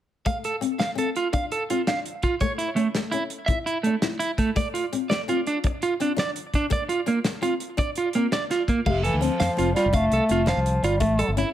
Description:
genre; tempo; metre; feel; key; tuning
highlife guitar band; 112 BPM (dotted quarters); 12/8; straight; F major; A4 = 441 Hz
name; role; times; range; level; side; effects
fingerpicked steel-string acoustic guitar; accompaniment; 0.3-11.5 s; A3 to E4; -30 LUFS; left 9 dB; none
electric guitar at the edge of break-up; arpeggios; 0.3-11.5 s; A3 to F5; -25 LUFS; right 4 dB; tape echo
warm soul drum kit; drums; 0.3-11.5 s; crash cymbal, hi-hat, kick drum, snare drum; -28 LUFS; equal; none
warm bass clarinet; melody; 8.9-11.4 s; C3 to A3; -23 LUFS; equal; none
fingered electric bass; bass; 8.9-11.4 s; F1 to F2; -25 LUFS; left 1 dB; none
room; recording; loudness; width
moderate studio reverb, RT60 0.9 s; none; -22 LUFS; side -12 dB against mid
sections
0.3-8.9 A section; 8.9-11.5 B section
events
none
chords
0.3 F; 2.4 A; 4.6 Dm7; 6.7 Bb; 8.9 F; 11.0 A

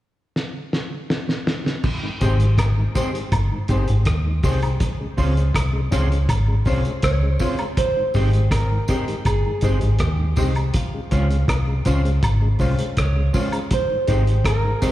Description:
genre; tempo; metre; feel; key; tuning
roots reggae; 81 BPM; 4/4; straight; Ab major; A4 = 440 Hz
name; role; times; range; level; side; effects
cloth-damped thuddy drum kit; drums; 0.4-14.9 s; crash cymbal, hi-hat, kick drum, rim click, snare drum; -23 LUFS; equal; tape echo
mellow tonewheel organ; accompaniment; 2.0-14.9 s; Ab2 to G4; -31 LUFS; left 2 dB; overdrive, chorus vibrato, slow rotary speaker, slapback echo
mellow electric guitar; accompaniment; 2.2-14.9 s; Ab3 to C5; -30 LUFS; right 3 dB; analog chorus, dub echo, slapback echo
clear upright piano; stabs; 2.2-14.9 s; Ab3 to C5; -31 LUFS; left 6 dB; slapback echo
vintage muted fingered electric bass; bass; 2.2-14.7 s; G1 to Eb2; -19 LUFS; equal; none
tambourine and woodblock; percussion; 2.2-14.9 s; none; -34 LUFS; right 1 dB; slapback echo
flamenco guitar; melody; 7.0-14.9 s; F4 to Db5; -26 LUFS; right 3 dB; dub echo, slapback echo
room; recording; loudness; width
studio ambience; live gig heard through the venue's PA, recital hall reverb; -18 LUFS; side -14 dB against mid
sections
0.0-1.8 A section; 1.8-7.8 B section; 7.8-14.9 C section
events
drum fill 0.4-1.8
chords
0.0 N.C.; 1.8 Abmaj7; 4.8 Dbmaj7; 7.8 Abmaj7; 10.7 Dbmaj7; 13.7 Abmaj7

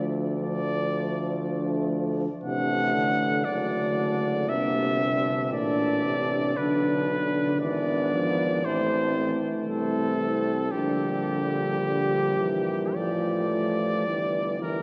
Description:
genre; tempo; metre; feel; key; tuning
classical, hymn-like piece for brass band; 51-59 BPM; 4/4; rubato; D minor; A4 = 435 Hz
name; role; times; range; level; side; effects
clear cornet; melody; 0.0-14.8 s; G4 to F#5; -31 LUFS; equal; none
dark French horn section; second line; 0.0-14.8 s; C4 to G4; -33 LUFS; equal; none
warm trombone; accompaniment; 0.0-14.8 s; Bb2 to G3; -34 LUFS; equal; none
warm trombone section; accompaniment; 0.0-14.8 s; E3 to D4; -34 LUFS; equal; none
clear tuba; bass; 0.0-14.8 s; F#1 to D2; -34 LUFS; equal; none
room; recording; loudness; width
wet cathedral reverb, RT60 5.3 s; nothing above 7.7 kHz; -26 LUFS; mono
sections
0.0-14.8 A section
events
none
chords
0.0 Dm; 2.4 D7/A; 4.5 Gm; 6.6 E7/B; 8.6 Am; 10.7 Gm/Bb; 13.0 Dm/A; 14.1 Gm6

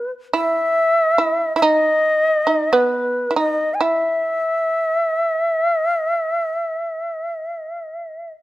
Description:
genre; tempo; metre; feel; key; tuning
japanese traditional, Japanese chamber music; 63-72 BPM; 4/4; rubato; unclear; A4 = 439 Hz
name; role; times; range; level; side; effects
reedy shakuhachi; melody; 0.0-8.3 s; B4 to G#5; -18 LUFS; equal; none
shamisen; second line; 0.0-8.3 s; B3 to E4; -20 LUFS; right 3 dB; none
room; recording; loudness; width
light reverb; close, detailed microphones; -16 LUFS; side -16 dB against mid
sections
0.0-8.4 A section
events
none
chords
none

